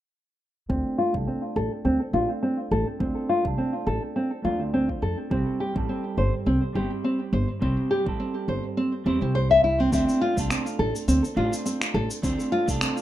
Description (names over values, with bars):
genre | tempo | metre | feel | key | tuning
organic downtempo | 104 BPM | 4/4 | swing 55% on 16ths | D minor | A4 = 441 Hz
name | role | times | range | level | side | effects
semi-hollow electric guitar | accompaniment | 0.7-13.0 s | G3 to C5 | -33 LUFS | right 3 dB | vintage 12-bit sampler grit, sidechain pumping, low-pass filter, digital delay
nylon-string guitar | arpeggios | 0.7-13.0 s | C4 to E5 | -24 LUFS | equal | low-pass filter, digital delay
upright bass | bass | 0.7-12.8 s | G1 to F2 | -27 LUFS | equal | tube saturation, sidechain pumping
electronic kick drum | drums | 0.7-12.8 s | none | -32 LUFS | equal | none
electronic cabasa and finger snaps | drums | 9.9-13.0 s | none | -30 LUFS | equal | none
room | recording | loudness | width
moderate small room reverb, RT60 0.6 s | rough home demo mix | -22 LUFS | side -13 dB against mid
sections
0.7-13.0 A section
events
filter sweep on nylon-string guitar 0.7-13.0; filter sweep on clean electric guitar 0.7-13.0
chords
0.7 Dm7; 5.3 C; 9.9 Dm7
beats
| 0.70 1.27 1.85 2.43 | 3.00 3.58 4.16 4.74 | 5.31 5.89 6.47 7.04 | 7.62 8.20 8.77 9.35 | 9.93 10.50 11.08 11.66 | 12.23 12.81